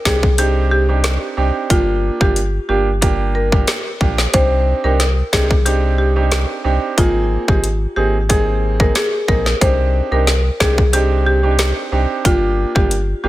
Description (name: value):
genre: dancehall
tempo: 91 BPM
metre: 4/4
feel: straight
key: C minor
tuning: A4 = 442 Hz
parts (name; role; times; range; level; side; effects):
- marimba with medium hard mallets; melody; 0.1-13.3 s; F4 to C5; -20 LUFS; left 1 dB; digital delay
- clear grand piano; accompaniment; 0.1-13.3 s; Bb3 to Ab4; -22 LUFS; right 5 dB; none
- warm sub bass; bass; 0.1-13.3 s; G1 to C2; -17 LUFS; equal; none
- island pop drum kit; drums; 0.1-13.1 s; hi-hat, kick drum, rim click, snare drum; -17 LUFS; equal; overdrive
room: little or no reverb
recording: none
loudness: -13 LUFS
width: side -16 dB against mid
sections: 0.0-13.3 A section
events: none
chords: 0.0 Cmadd9; 1.7 Gm7; 4.3 Cmadd9; 7.0 Abadd9; 9.6 Cmadd9; 12.3 Gm7